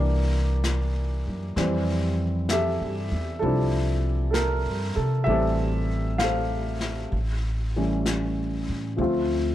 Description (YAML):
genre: jazz ballad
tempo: 65 BPM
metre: 4/4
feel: swing 68% on 8ths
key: F major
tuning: A4 = 440 Hz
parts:
  - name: warm upright piano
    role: accompaniment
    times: 0.0-9.5 s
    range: E3 to F5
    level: -26 LUFS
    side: equal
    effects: none
  - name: upright bass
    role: bass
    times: 0.0-9.5 s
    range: A1 to C3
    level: -26 LUFS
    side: equal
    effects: none
  - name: vintage brush drum kit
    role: drums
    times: 0.6-9.5 s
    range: brushed snare drum, hi-hat, snare drum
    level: -34 LUFS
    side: left 3 dB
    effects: none
room: little or no reverb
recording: dark, warm production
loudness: -23 LUFS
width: side -13 dB against mid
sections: 0.0-9.0 A section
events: none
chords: 0.0 C9; 1.6 Fmaj9; 7.1 A7; 9.0 Dm7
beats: 0.63 | 1.56 2.49 3.41 4.34 | 5.27 6.19 7.12 8.05 | 8.99